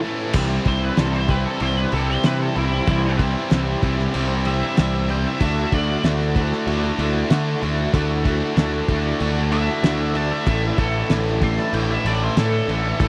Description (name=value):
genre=classic rock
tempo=95 BPM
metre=4/4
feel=straight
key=unclear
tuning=A4 = 443 Hz
part: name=picked steel-string acoustic guitar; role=accompaniment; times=0.0-13.1 s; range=A2 to C5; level=-32 LUFS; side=equal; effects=none
part: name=tonewheel organ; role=sustained chords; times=0.0-13.1 s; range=A3 to E5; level=-36 LUFS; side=equal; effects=none
part: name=cranked stack guitar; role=riff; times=0.0-13.1 s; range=A2 to F#4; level=-30 LUFS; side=equal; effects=overdrive
part: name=overdriven electric guitar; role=riff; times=0.0-13.1 s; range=A2 to D4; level=-29 LUFS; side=equal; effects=none
part: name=fuzz picked electric bass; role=bass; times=0.3-13.1 s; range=A1 to D3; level=-25 LUFS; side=equal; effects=overdrive
part: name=cloth-damped thuddy drum kit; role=drums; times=0.3-13.1 s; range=crash cymbal, kick drum, snare drum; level=-27 LUFS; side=equal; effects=none
part: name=octave-fuzz lead guitar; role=melody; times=0.7-13.1 s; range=E4 to C6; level=-30 LUFS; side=equal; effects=wah, distortion, tape echo
room=studio reverb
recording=dry, close 1970s-style studio recording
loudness=-20 LUFS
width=mono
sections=0.3-13.1 A section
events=break 0.0-0.3; lead electric guitar solo 0.3-13.1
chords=0.3 Cadd9; 5.4 Dadd9; 10.5 Asus4